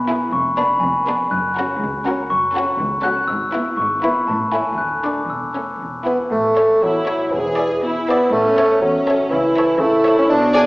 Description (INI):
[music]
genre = cinematic, playful, whimsical film cue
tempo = 121 BPM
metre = 2/4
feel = straight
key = A major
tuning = A4 = 440 Hz
[part]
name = glockenspiel with rubber mallets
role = melody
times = 0.0-6.0 s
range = Ab5 to F#6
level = -20 LUFS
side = left 1 dB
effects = none
[part]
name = rich studio double bass section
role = bass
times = 0.0-10.7 s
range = E1 to D2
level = -35 LUFS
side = equal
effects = none
[part]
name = warm studio cello section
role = bass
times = 0.0-10.7 s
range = C#2 to C#3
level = -28 LUFS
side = equal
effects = none
[part]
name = warm studio violin section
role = melody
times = 0.1-10.6 s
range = G#4 to G#5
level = -33 LUFS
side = left 1 dB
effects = none
[part]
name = dark studio violin section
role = second line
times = 0.1-10.6 s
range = C#4 to D5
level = -25 LUFS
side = equal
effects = none
[part]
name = warm studio viola section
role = accompaniment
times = 0.1-10.7 s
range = A3 to G#4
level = -24 LUFS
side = equal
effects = none
[part]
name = mellow bassoon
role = accompaniment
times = 6.1-10.7 s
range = E3 to D4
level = -15 LUFS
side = equal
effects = none
[sound]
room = wet recital hall reverb, RT60 1.7 s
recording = recorded in a church or concert hall, small speaker sound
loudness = -16 LUFS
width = side -20 dB against mid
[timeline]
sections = 0.0-6.3 A section; 6.3-10.7 B section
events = none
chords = 0.3 Fdim7; 1.3 F#; 3.3 E/G#; 4.3 A; 4.8 D; 5.3 A/E; 5.8 E; 6.3 A; 7.3 E7; 8.3 A; 9.3 A/C#